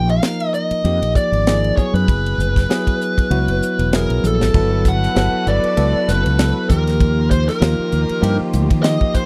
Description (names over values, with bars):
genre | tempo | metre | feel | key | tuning
electric jazz fusion | 98 BPM | 4/4 | swing 56% on 16ths | unclear | A4 = 440 Hz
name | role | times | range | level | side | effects
bluesy overdriven lead guitar | melody | 0.0-9.3 s | A4 to F#5 | -23 LUFS | equal | distortion
bell-like tine electric piano | accompaniment | 0.0-9.3 s | F3 to Ab5 | -24 LUFS | equal | none
mellow fretless electric bass | bass | 0.0-9.0 s | Fb1 to Eb3 | -20 LUFS | equal | analog chorus
tight funk drum kit | drums | 0.1-9.3 s | crash cymbal, hi-hat, kick drum, ride cymbal, snare drum, toms | -21 LUFS | equal | none
clear symphonic string section | sustained chords | 4.5-9.3 s | Eb3 to B4 | -33 LUFS | equal | none
room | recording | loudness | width
little or no reverb | dry, close 1970s-style studio recording | -17 LUFS | mono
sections
0.0-4.5 A section; 4.5-9.3 B section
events
tine electric piano fill 3.6-4.5; drum fill 4.2-4.5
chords
0.0 Bb7sus4; 1.8 Gb9sus4; 4.5 Gmaj9; 6.7 Ebadd9